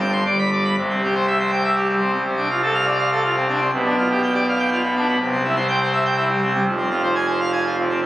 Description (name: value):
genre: classical, organ toccata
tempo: 122 BPM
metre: 3/4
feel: straight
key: C major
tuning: A4 = 440 Hz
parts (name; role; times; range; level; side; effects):
- pipe organ, full organ; solo; 0.0-8.1 s; F1 to C6; -17 LUFS; equal; none
room: wet recital hall reverb, RT60 1.6 s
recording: recorded on a phone in the room, studio ambience, compression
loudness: -17 LUFS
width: side -15 dB against mid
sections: 0.8-8.1 A section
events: none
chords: 0.3 G; 0.8 C; 2.3 Dm7/C; 3.7 G7/B; 5.2 C; 6.7 Fm